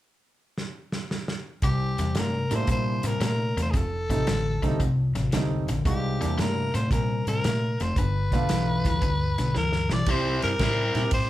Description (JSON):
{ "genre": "electric blues shuffle", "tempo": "114 BPM", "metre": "4/4", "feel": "swing 68% on 8ths", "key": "C mixolydian", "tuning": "A4 = 440 Hz", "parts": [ { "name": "warm soul drum kit", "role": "drums", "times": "0.6-11.3 s", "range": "hi-hat, kick drum, ride cymbal, snare drum", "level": "-29 LUFS", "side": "right 1 dB", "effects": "none" }, { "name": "growling tenor saxophone", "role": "melody", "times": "1.6-11.3 s", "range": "G4 to D5", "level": "-29 LUFS", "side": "left 1 dB", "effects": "none" }, { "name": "overdriven electric guitar", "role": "riff", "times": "1.6-11.0 s", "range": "F2 to E4", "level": "-28 LUFS", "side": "left 2 dB", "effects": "none" }, { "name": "vintage muted fingered electric bass", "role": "bass", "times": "1.6-11.3 s", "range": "F1 to Bb2", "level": "-28 LUFS", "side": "right 1 dB", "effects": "none" }, { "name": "warm upright piano", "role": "accompaniment", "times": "2.5-11.3 s", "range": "G3 to G4", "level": "-32 LUFS", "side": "right 5 dB", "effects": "none" } ], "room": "light reverb", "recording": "band playing live in one room", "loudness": "-23 LUFS", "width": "side -14 dB against mid", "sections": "0.0-1.6 A section; 1.6-10.1 B section; 10.1-11.3 C section", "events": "drum fill 0.6-1.6, 9.6-10.1", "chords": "0.0 N.C.; 1.6 C7; 3.7 F7; 5.9 C7; 8.0 G7; 10.1 C" }